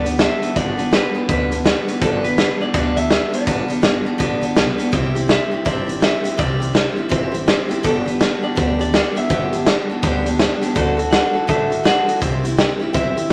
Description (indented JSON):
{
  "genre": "rockabilly",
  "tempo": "165 BPM",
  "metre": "4/4",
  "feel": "swing 63% on 8ths",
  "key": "G major",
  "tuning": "A4 = 440 Hz",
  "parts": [
    { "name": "electric guitar through a small old amp", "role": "melody", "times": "0.0-13.3 s", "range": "A4 to G5", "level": "-26 LUFS", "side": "equal", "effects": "none" },
    { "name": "picked steel-string acoustic guitar", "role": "accompaniment", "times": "0.0-13.3 s", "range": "G2 to B4", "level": "-24 LUFS", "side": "equal", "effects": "none" },
    { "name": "upright bass", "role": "bass", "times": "0.0-13.3 s", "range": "G1 to D2", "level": "-29 LUFS", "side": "equal", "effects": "none" },
    { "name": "raw garage drum kit", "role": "drums", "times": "0.1-13.3 s", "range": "hi-hat, kick drum, snare drum", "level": "-21 LUFS", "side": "equal", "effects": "none" }
  ],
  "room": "moderate club reverb, RT60 0.8 s",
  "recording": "none",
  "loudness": "-18 LUFS",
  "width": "mono",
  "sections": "0.0-13.3 A section",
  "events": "none",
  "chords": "0.0 G; 4.9 C; 7.8 G; 10.8 D; 12.2 C"
}